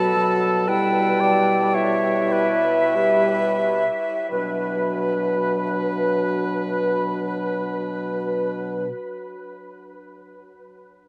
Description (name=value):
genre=classical, slow romantic movement for wind quintet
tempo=42-58 BPM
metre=3/4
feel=rubato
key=B minor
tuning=A4 = 438 Hz
part: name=silver concert flute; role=melody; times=0.0-8.9 s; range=B4 to A5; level=-25 LUFS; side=equal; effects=none
part: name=warm oboe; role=second line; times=0.0-8.9 s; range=A4 to D5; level=-29 LUFS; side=equal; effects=none
part: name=warm French horn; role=accompaniment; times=0.0-8.9 s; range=F#3 to G3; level=-30 LUFS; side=equal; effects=none
part: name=warm clarinet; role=accompaniment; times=0.0-8.9 s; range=D4 to G4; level=-33 LUFS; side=equal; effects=none
part: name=mellow bassoon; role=bass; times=0.0-8.9 s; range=B2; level=-30 LUFS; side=equal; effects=none
room=wet huge ambient reverb, RT60 9.1 s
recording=in a vast, echoing space, nothing above 11.0 kHz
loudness=-22 LUFS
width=mono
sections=0.0-4.3 A section; 4.3-8.1 B section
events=slowing down 0.0-4.3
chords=0.0 B7(no3); 0.7 Em/B; 4.3 Bm